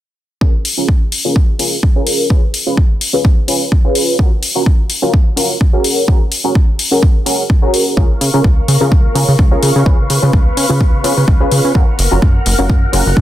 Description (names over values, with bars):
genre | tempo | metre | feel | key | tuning
filtered disco house | 127 BPM | 4/4 | swing 55% on 16ths | Db major | A4 = 440 Hz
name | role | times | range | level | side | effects
funky polysynth comp | accompaniment | 0.4-13.1 s | Db4 to Cb5 | -17 LUFS | equal | chorus, phaser, sidechain pumping, low-pass filter
electronic kick drum | drums | 0.4-13.2 s | none | -11 LUFS | equal | overdrive, small room ambience
tambourine | percussion | 0.4-13.2 s | none | barely audible | none | none
electronic hi-hat | drums | 0.7-13.0 s | none | -17 LUFS | left 3 dB | overdrive, sidechain pumping on hats, small room ambience
string machine, full ensemble | sustained chords | 8.0-13.2 s | Bb4 to F6 | -21 LUFS | left 1 dB | ensemble chorus, sidechain pumping, low-pass filter
plucky analog bass | bass | 8.0-13.2 s | Gb1 to Db3 | -14 LUFS | equal | sidechain pumping, low-pass filter
room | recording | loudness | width
digital ambience | dense, heavily limited modern master | -10 LUFS | side -13 dB against mid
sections
0.4-13.2 A section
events
filter sweep 0.4-13.2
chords
0.4 Db6; 2.3 Db7; 4.2 Gbmaj7; 5.8 Ab9sus4; 8.0 Db6; 9.9 Db7; 11.8 Gbmaj7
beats
| 0.41 0.89 1.36 1.83 | 2.30 2.78 3.25 3.72 | 4.19 4.67 5.14 5.61 | 6.08 6.56 7.03 7.50 | 7.97 8.45 8.92 9.39 | 9.86 10.34 10.81 11.28 | 11.75 12.22 12.70 13.17